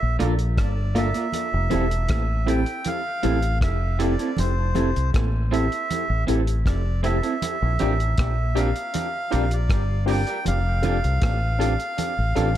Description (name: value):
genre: lovers rock reggae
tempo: 79 BPM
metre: 4/4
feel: straight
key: F major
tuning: A4 = 440 Hz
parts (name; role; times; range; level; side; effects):
- melodica; melody; 0.0-12.6 s; C5 to G5; -28 LUFS; right 2 dB; tape echo
- deep dub fingered electric bass; bass; 0.0-12.6 s; E1 to C2; -22 LUFS; equal; none
- tine electric piano; accompaniment; 0.2-12.5 s; Bb3 to A4; -29 LUFS; left 2 dB; overdrive, fast stereo tremolo, dub echo
- electric guitar through a small old amp; stabs; 0.2-12.5 s; C4 to D5; -30 LUFS; right 5 dB; dub echo
- cloth-damped thuddy drum kit; drums; 0.2-12.6 s; hi-hat, kick drum, rim click; -26 LUFS; equal; none
- congas; percussion; 0.2-12.2 s; none; -32 LUFS; right 4 dB; none
room: small room ambience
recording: dark, warm production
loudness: -20 LUFS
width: side -12 dB against mid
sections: 0.0-12.6 A section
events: none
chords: 0.0 Gm7; 1.3 Fmaj7; 7.4 Bb6; 10.5 F6